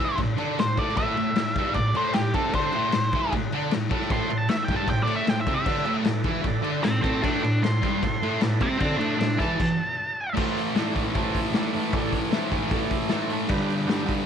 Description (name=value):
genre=garage rock duo or trio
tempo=153 BPM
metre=4/4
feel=straight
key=A minor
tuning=A4 = 441 Hz
part: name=octave-fuzz lead guitar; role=melody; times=0.0-10.3 s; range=G4 to D6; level=-27 LUFS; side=equal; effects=distortion
part: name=thick fuzz guitar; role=riff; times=0.0-14.3 s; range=G2 to E4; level=-25 LUFS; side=right 1 dB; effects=distortion
part: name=raw garage drum kit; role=drums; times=0.2-14.2 s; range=crash cymbal, hi-hat, kick drum, snare drum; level=-27 LUFS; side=left 2 dB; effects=none
part: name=combo organ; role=sustained chords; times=4.1-14.1 s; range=D4 to D5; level=-35 LUFS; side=right 12 dB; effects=wide subtle chorus
room=light reverb, small room ambience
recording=1960s-style stereo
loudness=-22 LUFS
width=side -8 dB against mid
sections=0.0-10.4 A section; 10.4-14.3 B section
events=lead electric guitar solo 0.0-10.4; stop 9.6-10.4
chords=0.0 Am; 13.5 G